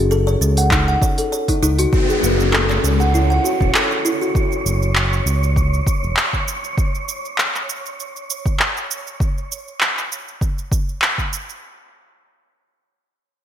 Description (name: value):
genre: organic downtempo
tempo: 99 BPM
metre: 4/4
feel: swing 54% on 16ths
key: F# dorian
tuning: A4 = 442 Hz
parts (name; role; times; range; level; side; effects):
- kalimba; arpeggios; 0.0-4.3 s; C#4 to F#5; -20 LUFS; left 1 dB; ping-pong delay
- smooth synth bass; bass; 0.0-6.1 s; E1 to C#2; -18 LUFS; equal; none
- deep house drum kit; drums; 0.1-11.6 s; handclaps, hi-hat, shaker; -21 LUFS; right 1 dB; gated reverb
- electronic kick drum; drums; 0.7-11.3 s; none; -20 LUFS; equal; none
- downlifter; sound effects; 1.9-6.8 s; none; -25 LUFS; left 1 dB; none
- wind-like tuned noise texture; texture; 2.9-9.2 s; C#5; -29 LUFS; right 3 dB; built-in reverb, analog chorus
room: light reverb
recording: bright 1980s-style digital production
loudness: -16 LUFS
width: side -10 dB against mid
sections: 0.0-1.9 A section; 1.9-11.6 B section; 11.6-13.4 C section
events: none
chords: 0.0 F#m6; 1.9 F#5; 6.8 N.C.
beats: 0.11 0.71 1.32 | 1.93 2.53 3.14 3.74 | 4.35 4.96 5.56 6.17 | 6.77 7.38 7.99 8.59 | 9.20 9.80 10.41 11.02